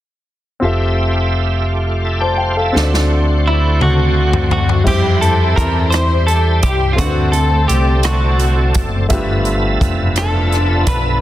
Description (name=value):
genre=slow gospel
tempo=57 BPM (dotted quarters)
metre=6/8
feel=straight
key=F major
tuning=A4 = 440 Hz
part: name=clear baby grand piano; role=accompaniment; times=0.6-11.2 s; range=G2 to A5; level=-21 LUFS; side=left 2 dB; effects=none
part: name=bright tonewheel organ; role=sustained chords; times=0.6-11.2 s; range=F3 to A5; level=-22 LUFS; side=right 2 dB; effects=fast rotary speaker, overdrive, chorus vibrato
part: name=fingered electric bass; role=bass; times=0.6-11.2 s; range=F1 to F2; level=-16 LUFS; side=equal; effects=none
part: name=swinging big-band drum kit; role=drums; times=2.8-11.0 s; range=crash cymbal, hi-hat, kick drum, rim click, snare drum, toms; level=-18 LUFS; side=equal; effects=soft clipping on snare
part: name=clean electric guitar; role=melody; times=3.5-11.2 s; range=E4 to C5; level=-20 LUFS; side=right 2 dB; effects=none
part: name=dark studio string section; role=melody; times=3.5-11.2 s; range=A3 to C5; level=-21 LUFS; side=left 4 dB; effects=none
room=small room ambience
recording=dense, heavily limited modern master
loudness=-12 LUFS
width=side -14 dB against mid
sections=0.6-4.9 A section; 4.9-11.2 B section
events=drum fill 2.7-4.9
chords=0.6 Fmaj9; 2.7 D7; 4.9 Fmaj9; 7.0 D7; 9.1 G13